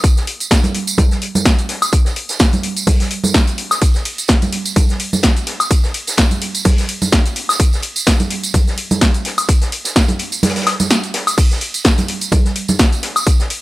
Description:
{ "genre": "house", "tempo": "127 BPM", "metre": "4/4", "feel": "swing 55% on 16ths", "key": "none", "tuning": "none", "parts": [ { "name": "electronic kick drum", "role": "drums", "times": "0.0-13.4 s", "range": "none", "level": "-14 LUFS", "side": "equal", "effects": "none" }, { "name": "punchy analog drum machine", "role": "drums", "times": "0.0-13.6 s", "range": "cabasa, crash cymbal, hi-hat, ride cymbal, snare drum, woodblock", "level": "-18 LUFS", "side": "left 1 dB", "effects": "overdrive" }, { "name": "vintage drum kit", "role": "drums", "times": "0.0-13.6 s", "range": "hi-hat, snare drum", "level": "-26 LUFS", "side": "left 1 dB", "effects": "sidechain pumping on hats, high-pass filter on hats, high-pass filter on snare, high-pass filter on room" }, { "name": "tambourine and congas", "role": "percussion", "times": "0.0-13.5 s", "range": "none", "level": "-20 LUFS", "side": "right 3 dB", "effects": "none" } ], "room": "small room ambience", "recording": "dry, gritty hardware recording", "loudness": "-13 LUFS", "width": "side -18 dB against mid", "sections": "0.0-13.6 A section", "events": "kick drops out 10.4-11.4", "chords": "none", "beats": "| 0.04 0.51 0.98 1.46 | 1.93 2.40 2.87 3.35 | 3.82 4.29 4.76 5.24 | 5.71 6.18 6.65 7.12 | 7.60 8.07 8.54 9.01 | 9.49 9.96 10.43 10.90 | 11.38 11.85 12.32 12.79 | 13.27" }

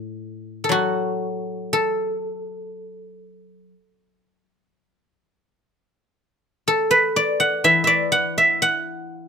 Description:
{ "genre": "chinese traditional, Chinese solo plucked strings", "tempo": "60 BPM", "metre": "4/4", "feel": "rubato", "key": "unclear", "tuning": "A4 = 440 Hz", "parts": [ { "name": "guzheng", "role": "solo", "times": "0.0-9.3 s", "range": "A2 to F#5", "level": "-19 LUFS", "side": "equal", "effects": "none" } ], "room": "light reverb", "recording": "close, detailed microphones", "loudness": "-18 LUFS", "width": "side -6 dB against mid", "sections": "0.0-9.3 A section", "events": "none", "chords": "none", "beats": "0.70 | 1.72 2.73 3.73 4.72 | 5.70 6.68 7.66 8.66" }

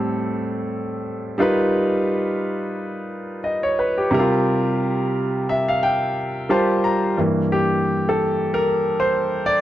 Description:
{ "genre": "R&B", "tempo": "88 BPM", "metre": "4/4", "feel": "swing 57% on 16ths", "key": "unclear", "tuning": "A4 = 440 Hz", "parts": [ { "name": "clear concert grand piano", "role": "solo", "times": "0.0-9.6 s", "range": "G2 to Bb5", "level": "-19 LUFS", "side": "equal", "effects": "none" } ], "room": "little or no reverb", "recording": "dry, close 1970s-style studio recording", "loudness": "-18 LUFS", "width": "side -13 dB against mid", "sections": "0.0-7.2 A section; 7.2-9.6 B section", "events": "grand piano fill 5.1-7.2; grand piano solo 7.2-9.6", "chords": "0.0 Am7; 1.4 G7alt; 4.1 C7sus4; 6.5 Gm11; 7.2 Gm6", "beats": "0.35 1.04 | 1.72 2.40 3.08 3.76 | 4.45 5.13 5.81 6.49 | 7.17 7.85 8.54 9.22" }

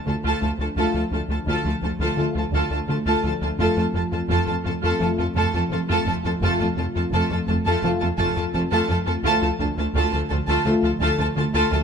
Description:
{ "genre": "cinematic, hybrid orchestral and electronic film score", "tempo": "85 BPM", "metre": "4/4", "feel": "straight", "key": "D minor", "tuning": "A4 = 440 Hz", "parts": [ { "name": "rich symphonic violin section", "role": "second line", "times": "0.1-11.8 s", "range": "A4 to A5", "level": "-25 LUFS", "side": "right 1 dB", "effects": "none" }, { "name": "rich symphonic viola section", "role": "accompaniment", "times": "0.1-11.8 s", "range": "A3 to F4", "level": "-27 LUFS", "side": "right 1 dB", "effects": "none" }, { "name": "harp-like synth pluck", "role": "arpeggios", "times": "0.1-11.8 s", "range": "D3 to F4", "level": "-30 LUFS", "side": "left 2 dB", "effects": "chorus, ping-pong delay" }, { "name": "rubbery square bass", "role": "riff", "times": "0.1-11.8 s", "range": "D2 to F3", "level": "-27 LUFS", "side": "left 2 dB", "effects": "none" }, { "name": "rich symphonic double bass section", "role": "bass", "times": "0.1-11.8 s", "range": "F1 to D2", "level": "-30 LUFS", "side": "right 4 dB", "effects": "none" }, { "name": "warm symphonic cello section", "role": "bass", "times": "0.1-11.8 s", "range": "D2 to F2", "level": "-30 LUFS", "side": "right 3 dB", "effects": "none" }, { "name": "mellow French horn section", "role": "sustained chords", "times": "0.8-10.9 s", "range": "A3 to F4", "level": "-27 LUFS", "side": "left 4 dB", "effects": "none" } ], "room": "light reverb", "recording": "close, detailed microphones", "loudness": "-20 LUFS", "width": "side -6 dB against mid", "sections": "0.0-11.8 A section", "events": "none", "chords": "0.0 Dm; 3.6 F; 9.2 Dm", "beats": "0.06 | 0.77 1.47 2.18 2.88 | 3.59 4.30 5.00 5.71 | 6.42 7.12 7.83 8.53 | 9.24 9.94 10.65 11.36" }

